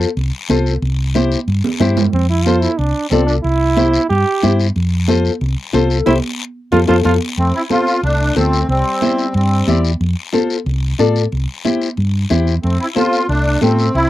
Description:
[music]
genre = latin, cumbia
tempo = 183 BPM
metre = 4/4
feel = straight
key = F major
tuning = A4 = 442 Hz
[part]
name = flamenco guitar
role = accompaniment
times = 0.0-13.9 s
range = E4 to D5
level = -17 LUFS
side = left 6 dB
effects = none
[part]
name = hollow-body short-scale fingered electric bass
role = bass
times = 0.0-14.1 s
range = C2 to A2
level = -16 LUFS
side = equal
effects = none
[part]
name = guiro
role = percussion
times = 0.0-14.1 s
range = none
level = -28 LUFS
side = left 6 dB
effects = none
[part]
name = congas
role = percussion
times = 0.2-14.1 s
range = none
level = -20 LUFS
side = right 4 dB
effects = none
[part]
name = bright trombone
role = second line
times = 2.1-9.8, 12.6-14.1 s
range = G3 to G4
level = -20 LUFS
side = right 4 dB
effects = none
[part]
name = musette accordion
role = melody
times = 7.4-9.8, 12.6-14.1 s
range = C4 to F4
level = -17 LUFS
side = equal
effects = slapback echo
[sound]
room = light reverb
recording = dry, close 1970s-style studio recording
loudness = -13 LUFS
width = side -14 dB against mid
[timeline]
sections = 0.0-7.4 A section; 7.4-14.1 B section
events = trombone solo 0.0-7.4; drum fill 1.6-2.1, 6.6-7.4; band accent 6.1-7.4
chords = 0.0 F; 0.8 C; 2.1 F; 3.4 C; 4.8 F; 6.1 C; 6.7 F; 8.7 C; 10.0 F; 11.3 C; 12.6 F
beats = 0.17 0.50 | 0.83 1.15 1.48 1.81 | 2.14 2.46 2.79 3.12 | 3.45 3.77 4.10 4.43 | 4.76 5.08 5.41 5.74 | 6.07 6.40 6.72 7.05 | 7.38 7.71 8.04 8.36 | 8.69 9.02 9.35 9.68 | 10.01 10.34 10.66 10.99 | 11.32 11.65 11.98 12.31 | 12.63 12.96 13.29 13.62 | 13.95

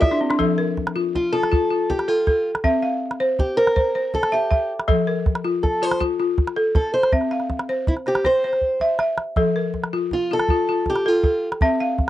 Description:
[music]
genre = west african traditional, West African string and xylophone music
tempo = 107 BPM (dotted quarters)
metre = 12/8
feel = straight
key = F major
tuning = A4 = 439 Hz
[part]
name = picked acoustic archtop guitar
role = melody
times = 0.0-11.5 s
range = E4 to E5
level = -22 LUFS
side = equal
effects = none
[part]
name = balafon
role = arpeggios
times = 0.0-12.1 s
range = F3 to F5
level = -21 LUFS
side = left 1 dB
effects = cassette tape
[part]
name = calabash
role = percussion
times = 0.0-12.1 s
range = none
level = -22 LUFS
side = right 1 dB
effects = none
[sound]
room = light reverb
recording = home recording on cassette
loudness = -18 LUFS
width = side -14 dB against mid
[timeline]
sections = 0.4-12.1 A section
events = balafon fill 0.0-0.4; drum fill 8.6-9.4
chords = 0.4 F; 2.6 C; 4.9 F; 7.1 C; 9.4 F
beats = | 0.40 0.96 1.52 2.08 | 2.65 3.21 3.77 4.33 | 4.89 5.45 6.01 6.57 | 7.13 7.69 8.25 8.81 | 9.37 9.93 10.49 11.05 | 11.61

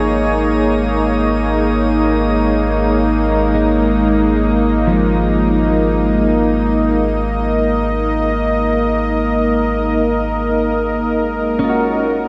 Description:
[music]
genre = ambient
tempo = free time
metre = none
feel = none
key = unclear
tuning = A4 = 442 Hz
[part]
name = warm analog pad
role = sustained chords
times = 0.0-12.3 s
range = A#3 to D#5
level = -17 LUFS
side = equal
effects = chorus, shimmer reverb
[part]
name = clean electric guitar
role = arpeggios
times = 0.0-12.3 s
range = E#3 to F#4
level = -24 LUFS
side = equal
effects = subtle chorus, diffuse ambient delay, shimmer reverb
[part]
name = round analog bass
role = bass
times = 0.0-12.3 s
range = G#1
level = -24 LUFS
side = equal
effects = none
[part]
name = bowed-like drone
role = drone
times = 0.1-12.3 s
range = G#3 to D#4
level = -27 LUFS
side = equal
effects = built-in reverb
[part]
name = drifting glass-harmonics texture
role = texture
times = 0.0-12.3 s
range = D#5 to D#6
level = -35 LUFS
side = equal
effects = chorus, built-in reverb, shimmer reverb
[sound]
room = wet huge ambient reverb, RT60 8.4 s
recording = dreamy mix soaked in reverb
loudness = -16 LUFS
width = mono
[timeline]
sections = 0.0-12.3 A section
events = fade-out on synth texture 0.0-12.3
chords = 0.0 F#/G# (rootless)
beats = free time

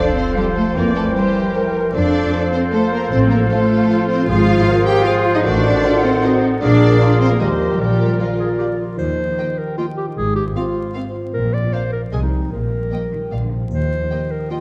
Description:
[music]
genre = cinematic, playful, whimsical film cue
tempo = 153 BPM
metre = 3/4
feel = straight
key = F major, Eb major from 4.3 s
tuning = A4 = 440 Hz
[part]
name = warm studio violin section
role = melody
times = 0.0-14.6 s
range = F4 to Ab5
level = -29 LUFS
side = equal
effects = none
[part]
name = clear clarinet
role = second line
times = 0.0-14.6 s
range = Eb4 to D5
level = -27 LUFS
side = equal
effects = none
[part]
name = rich studio violin section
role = second line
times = 0.0-14.6 s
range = F4 to F#5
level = -35 LUFS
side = equal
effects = none
[part]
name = small flute group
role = second line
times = 0.0-8.8 s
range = D5 to G5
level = -31 LUFS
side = equal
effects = none
[part]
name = warm oboe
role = second line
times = 0.0-8.8 s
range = Bb4 to C5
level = -30 LUFS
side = equal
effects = none
[part]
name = mellow bassoon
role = accompaniment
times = 0.0-8.8 s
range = Bb2 to F3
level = -27 LUFS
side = equal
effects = none
[part]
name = rich studio viola section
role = accompaniment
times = 0.0-14.6 s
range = Ab3 to D5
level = -28 LUFS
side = equal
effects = none
[part]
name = mellow French horn section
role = sustained chords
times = 0.0-8.8 s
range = F4 to D5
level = -27 LUFS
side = equal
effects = none
[part]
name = concert harp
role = arpeggios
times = 0.0-14.6 s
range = Ab2 to Eb6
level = -27 LUFS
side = equal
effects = none
[part]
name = rich studio cello section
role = bass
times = 0.0-14.0 s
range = Eb2 to G4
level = -23 LUFS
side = equal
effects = none
[part]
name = rich studio double bass section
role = bass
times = 0.8-14.0 s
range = Ab1 to F2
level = -23 LUFS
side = equal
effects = none
[part]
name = triangle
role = percussion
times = 9.0-9.7, 13.7-14.5 s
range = none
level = -32 LUFS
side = equal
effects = none
[sound]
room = wet scoring stage reverb, RT60 2.1 s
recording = dark, warm production, vinyl crackle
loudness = -17 LUFS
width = mono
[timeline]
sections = 0.0-9.0 A section; 9.0-14.6 B section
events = none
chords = 0.0 F; 0.8 C7/F; 1.9 F; 3.1 F/A; 4.3 Fm/Ab; 5.4 Adim7; 6.6 Bb7; 7.4 Eb; 7.8 Bb; 9.0 Eb; 10.2 Fm/Ab; 11.3 Bb; 12.1 Ab/C; 12.5 Eb/Bb; 13.3 Bb; 13.7 Eb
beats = 0.38 | 0.77 1.16 1.55 | 1.94 2.33 2.73 | 3.11 3.50 3.89 | 4.28 4.67 5.06 | 5.45 5.84 6.23 | 6.62 7.01 7.40 | 7.80 8.20 8.60 | 8.99 9.38 9.78 | 10.17 10.56 10.94 | 11.33 11.72 12.12 | 12.52 12.92 13.32 | 13.71 14.11 14.50

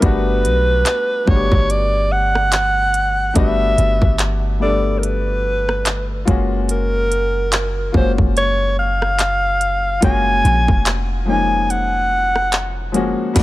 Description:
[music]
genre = contemporary R&B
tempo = 72 BPM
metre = 4/4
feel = swing 58% on 16ths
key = unclear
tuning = A4 = 441 Hz
[part]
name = mellow alto saxophone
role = melody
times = 0.0-13.4 s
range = A#4 to G#5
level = -18 LUFS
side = equal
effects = ping-pong delay
[part]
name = warm concert grand piano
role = accompaniment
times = 0.0-13.4 s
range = E#3 to A#4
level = -23 LUFS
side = left 4 dB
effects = none
[part]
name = warm 808-style bass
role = bass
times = 0.0-13.4 s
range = E#1 to B1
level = -20 LUFS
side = equal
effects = none
[part]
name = trap drum kit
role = drums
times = 0.0-13.4 s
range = crash cymbal, handclaps, hi-hat, kick drum, rim click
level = -18 LUFS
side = equal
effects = none
[sound]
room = digital ambience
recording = none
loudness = -14 LUFS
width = side -17 dB against mid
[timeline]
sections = 0.0-13.4 A section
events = none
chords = 0.0 Gmaj9; 6.3 F#maj9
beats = | 0.03 0.86 1.69 2.52 | 3.36 4.19 5.03 5.86 | 6.69 7.53 8.36 9.19 | 10.03 10.86 11.69 12.53 | 13.36

